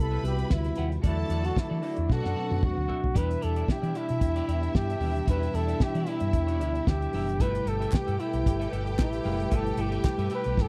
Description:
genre	disco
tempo	113 BPM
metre	4/4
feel	straight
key	unclear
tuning	A4 = 440 Hz
part	breathy flugelhorn	melody	0.0-10.7 s	E4 to B4	-34 LUFS	equal	none
part	warm symphonic violin section	second line	0.0-10.7 s	E4 to B5	-41 LUFS	equal	none
part	mellow tine electric piano	accompaniment	0.0-10.7 s	B2 to F#4	-37 LUFS	equal	none
part	warm symphonic string section	sustained chords	0.0-10.7 s	C3 to B4	-41 LUFS	equal	none
part	hollow-body short-scale fingered electric bass	bass	0.0-10.7 s	F#1 to E3	-32 LUFS	equal	none
part	semi-hollow electric guitar	accompaniment	0.1-10.6 s	E4 to F#5	-45 LUFS	equal	phaser
part	damped 70s drum kit	drums	0.2-10.7 s	hi-hat, kick drum, snare drum, toms	-28 LUFS	equal	none
part	group handclap	percussion	7.9-10.2 s	none	-46 LUFS	equal	none
room	little or no reverb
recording	dry, close 1970s-style studio recording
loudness	-28 LUFS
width	mono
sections	0.0-3.2 A section; 3.2-10.7 B section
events	drum fill 2.1-3.2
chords	0.0 Cmaj7; 1.0 E9sus4; 2.1 Bm7; 3.2 Em7; 7.4 G69

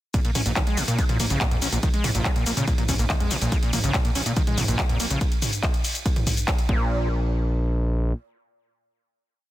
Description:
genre	driving peak-time techno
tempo	142 BPM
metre	4/4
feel	straight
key	Bb minor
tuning	A4 = 440 Hz
part	overdriven acid bass	riff	0.1-7.1 s	Bb2 to Db4	-28 LUFS	equal	distortion, analog chorus, cassette tape, sidechain pumping, tape echo
part	electronic kick drum	drums	0.1-6.8 s	none	-24 LUFS	equal	none
part	techno drum kit	drums	0.1-6.7 s	handclaps, hi-hat, ride cymbal, shaker, toms	-26 LUFS	equal	sidechain pumping on hats, sidechain pumping on cymbals, sidechain pumping on perc, sidechain pumping on toms
part	gritty driven synth bass	bass	0.4-8.1 s	Bb1 to Bb2	-25 LUFS	equal	sidechain pumping
room	little or no reverb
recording	dense, heavily limited modern master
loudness	-21 LUFS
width	side -15 dB against mid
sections	0.1-6.9 drop; 6.9-9.5 final hit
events	drop 0.1-6.9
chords	none

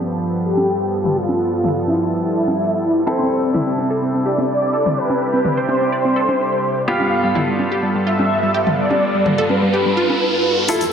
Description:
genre	progressive house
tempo	126 BPM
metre	4/4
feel	straight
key	G mixolydian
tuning	A4 = 440 Hz
part	lush unison pad	sustained chords	0.0-10.9 s	F2 to E5	-22 LUFS	equal	chorus
part	bright baby grand piano	stabs	0.0-10.8 s	F3 to A4	-24 LUFS	left 1 dB	low-pass filter, tape echo
part	expressive synth lead	melody	0.4-10.9 s	E4 to F5	-19 LUFS	equal	ensemble chorus, cassette tape, tape echo
part	electronic congas and toms	percussion	0.6-10.2 s	none	-24 LUFS	left 1 dB	none
part	wide unison pluck	arpeggios	3.1-10.9 s	F3 to D5	-21 LUFS	right 1 dB	tape echo
part	riser	sound effects	8.4-10.9 s	none	-23 LUFS	right 2 dB	none
part	electronic hi-hat	drums	10.7-10.9 s	none	-28 LUFS	left 2 dB	overdrive
part	tube shaker	percussion	10.7-10.9 s	none	-28 LUFS	left 2 dB	none
room	moderate digital room reverb, RT60 1.1 s, digital ambience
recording	low-pass filter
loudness	-15 LUFS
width	side -7 dB against mid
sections	0.0-10.7 A section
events	filter sweep 0.0-10.7; riser 8.4-10.7, 10.7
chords	0.0 G7; 3.1 C6; 6.9 G7

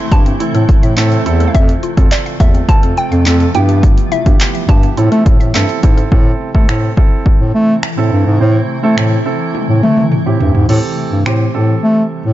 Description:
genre	dance-pop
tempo	105 BPM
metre	4/4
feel	straight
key	A minor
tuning	A4 = 440 Hz
part	hollow square pluck	melody	0.0-5.8 s	D5 to A5	-22 LUFS	equal	chorus, dub echo
part	warm grand piano	accompaniment	0.0-12.3 s	B3 to C5	-21 LUFS	right 6 dB	sidechain pumping
part	granular cloud pad	sustained chords	0.0-12.3 s	C3 to E5	-21 LUFS	equal	built-in reverb, sidechain pumping
part	mallet-like synth pluck	arpeggios	0.0-6.1 s	G3 to F5	-25 LUFS	left 2 dB	chorus, sidechain pumping, dub echo
part	mellow bass clarinet	bass	0.1-12.3 s	E2 to A3	-12 LUFS	equal	sidechain pumping
part	punchy analog drum machine	drums	0.1-11.4 s	crash cymbal, finger snaps, handclaps, hi-hat, kick drum, toms	-12 LUFS	equal	none
room	little or no reverb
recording	nothing above 7.5 kHz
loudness	-10 LUFS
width	side -14 dB against mid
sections	0.0-6.1 A section; 6.1-10.7 B section; 10.7-12.3 C section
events	drum fill 9.5-10.7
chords	0.0 Am; 1.5 F; 3.5 Em/G; 5.0 Am; 10.7 Am7

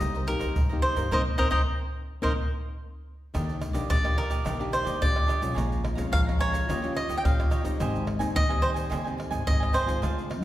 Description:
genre	samba and choro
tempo	108 BPM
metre	4/4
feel	straight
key	C minor, Eb major from 3.3 s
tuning	A4 = 440 Hz
part	cavaquinho	melody	0.0-10.0 s	Bb4 to G5	-29 LUFS	equal	none
part	cavaquinho	accompaniment	0.0-10.3 s	D4 to Bb5	-36 LUFS	right 4 dB	none
part	nylon-string guitar	accompaniment	0.0-10.4 s	G2 to G4	-34 LUFS	left 2 dB	none
part	upright bass	bass	0.0-10.4 s	Ab1 to G2	-32 LUFS	equal	none
part	tube shaker, surdo, pandeiro and tamborim	percussion	0.0-10.4 s	none	-28 LUFS	equal	none
room	wet recital hall reverb, RT60 1.4 s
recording	recorded in a church or concert hall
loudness	-24 LUFS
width	side -14 dB against mid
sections	0.0-3.3 A section; 3.3-10.4 B section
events	band accent 1.1-3.3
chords	0.0 Cm7; 3.3 Ebmaj7; 5.6 Bbm7; 6.7 Eb9; 7.8 Abmaj7

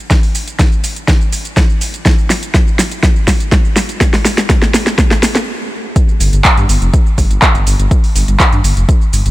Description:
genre	progressive house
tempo	123 BPM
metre	4/4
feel	straight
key	unclear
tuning	A4 = 442 Hz
part	deep house drum kit	drums	0.1-9.3 s	handclaps, hi-hat, shaker, snare drum	-14 LUFS	equal	overdrive
part	electronic kick drum	drums	0.1-9.0 s	none	-12 LUFS	equal	overdrive
part	dark detuned saw bass	bass	6.2-9.3 s	F1 to G2	-13 LUFS	equal	sidechain pumping
room	digital ambience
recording	none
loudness	-10 LUFS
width	side -17 dB against mid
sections	0.0-6.0 A section; 6.0-9.3 B section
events	build-up 0.0-6.0; drum fill 0.0-5.5; stop 5.5-6.0; drop 6.0-9.3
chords	none

